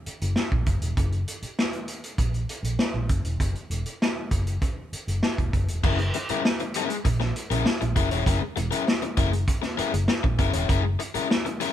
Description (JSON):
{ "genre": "funk", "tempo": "99 BPM", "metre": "4/4", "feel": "straight", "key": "F# mixolydian", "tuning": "A4 = 440 Hz", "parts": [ { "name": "vintage muted fingered electric bass", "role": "bass", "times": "0.1-11.2 s", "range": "E1 to A#1", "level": "-26 LUFS", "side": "equal", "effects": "none" }, { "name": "vintage drum kit", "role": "drums", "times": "0.1-11.7 s", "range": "crash cymbal, hi-hat, kick drum, snare drum", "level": "-26 LUFS", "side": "equal", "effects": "none" }, { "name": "overdriven electric guitar", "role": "accompaniment", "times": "5.8-11.7 s", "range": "G#3 to C#5", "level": "-27 LUFS", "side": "left 6 dB", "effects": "none" } ], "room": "light reverb", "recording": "band playing live in one room", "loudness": "-23 LUFS", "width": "side -11 dB against mid", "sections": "0.0-5.8 A section; 5.8-11.7 B section", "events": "none", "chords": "0.0 F#7; 5.8 F#9" }